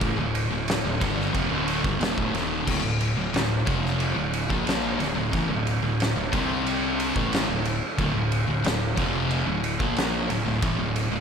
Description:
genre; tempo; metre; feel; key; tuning
stoner and doom metal; 90 BPM; 4/4; straight; D minor; A4 = 440 Hz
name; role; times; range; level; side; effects
thick fuzz guitar; riff; 0.0-11.2 s; D2 to C4; -28 LUFS; left 7 dB; distortion
thick fuzz guitar; riff; 0.0-11.2 s; D2 to C4; -29 LUFS; right 6 dB; distortion
fuzz fingered electric bass; bass; 0.0-11.2 s; D1 to C2; -32 LUFS; equal; overdrive
oversized low-tuned drum kit; drums; 0.0-11.1 s; crash cymbal, kick drum, ride cymbal, snare drum; -26 LUFS; equal; none
room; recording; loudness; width
light reverb; none; -22 LUFS; side -6 dB against mid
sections
0.0-11.2 A section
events
none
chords
0.0 Dm; 6.3 C5; 7.2 Dm

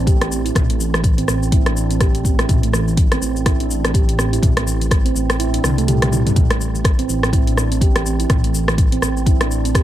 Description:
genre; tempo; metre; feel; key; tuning
afro house; 124 BPM; 4/4; swing 58% on 16ths; A minor; A4 = 439 Hz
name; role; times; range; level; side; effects
handpan; arpeggios; 0.0-9.8 s; E3 to G4; -22 LUFS; right 5 dB; sidechain pumping, dub echo
dark detuned saw bass; bass; 0.0-9.8 s; A1 to C2; -20 LUFS; equal; sidechain pumping
deep house drum kit; drums; 0.1-9.8 s; cabasa, hi-hat, rim click, toms; -21 LUFS; left 1 dB; none
electronic kick drum; drums; 0.1-9.8 s; none; -16 LUFS; equal; none
room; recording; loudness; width
light reverb, digital ambience; echo-heavy mix; -14 LUFS; side -13 dB against mid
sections
0.0-9.8 A section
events
kick drops out 5.4-6.4; drum fill 5.6-6.4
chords
0.0 Am

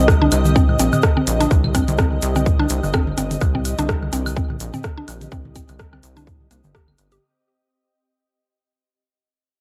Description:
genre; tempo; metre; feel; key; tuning
minimal techno; 126 BPM; 4/4; swing 56% on 16ths; C minor; A4 = 440 Hz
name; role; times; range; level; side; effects
rubbery square bass; bass; 0.0-7.2 s; G1 to C2; -24 LUFS; equal; sidechain pumping
granular cloud pad; texture; 0.0-7.2 s; C4 to Eb5; -29 LUFS; equal; built-in reverb, sidechain pumping, cassette tape
electronic kick drum; drums; 0.1-6.9 s; none; -21 LUFS; equal; cassette tape
minimal click drum kit; drums; 0.1-7.2 s; hi-hat, rim click; -28 LUFS; equal; overdrive, cassette tape
egg shaker; percussion; 0.1-7.2 s; none; -35 LUFS; equal; none
electronic woodblock, toms and claves; percussion; 0.1-7.2 s; none; -27 LUFS; equal; cassette tape
mallet-like synth pluck; riff; 0.2-7.2 s; Bb3 to G4; -26 LUFS; equal; chorus, sidechain pumping, cassette tape, analog delay
room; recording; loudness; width
digital ambience; home recording on cassette; -19 LUFS; mono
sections
0.0-7.2 A section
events
drop 0.0-7.2; fade-out 0.0-7.2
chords
0.0 Cm

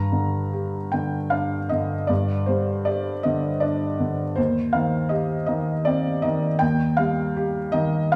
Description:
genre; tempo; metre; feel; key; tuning
classical, romantic nocturne for solo piano; 47-55 BPM (dotted quarters); 12/8; rubato; G minor; A4 = 443 Hz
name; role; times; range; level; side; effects
felt-muted upright piano; solo; 0.0-8.2 s; Eb2 to Bb5; -23 LUFS; equal; none
room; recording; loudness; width
wet large studio reverb, RT60 0.9 s; heard from further back in the room; -24 LUFS; mono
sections
0.0-8.2 A section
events
none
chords
0.0 Gm; 4.4 Cm/Eb

